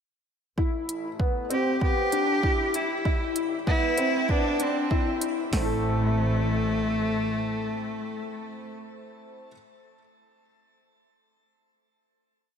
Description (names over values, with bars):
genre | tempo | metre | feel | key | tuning
piano and strings electronica | 97 BPM | 4/4 | straight | A minor | A4 = 439 Hz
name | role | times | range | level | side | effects
felt-muted upright piano | riff | 0.6-9.5 s | A3 to A4 | -29 LUFS | left 2 dB | analog chorus, ping-pong delay, shimmer reverb
rich symphonic double bass section | bass | 0.6-7.3 s | G1 to A1 | -32 LUFS | equal | sidechain pumping, high-pass filter
deep house drum kit | drums | 0.6-5.7 s | hi-hat, kick drum, snare drum | -26 LUFS | right 1 dB | overdrive
electronic hi-hat | drums | 0.9-5.3 s | none | -33 LUFS | equal | overdrive
rich cello | melody | 1.5-8.8 s | A3 to G4 | -27 LUFS | equal | ping-pong delay, shimmer reverb
room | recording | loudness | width
wet plate reverb, RT60 2.6 s | dreamy mix soaked in reverb | -23 LUFS | side -7 dB against mid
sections
0.6-5.5 build; 5.5-8.0 final chord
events
build-up 0.6-5.5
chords
0.6 Em/A; 3.1 Amadd9; 5.5 Am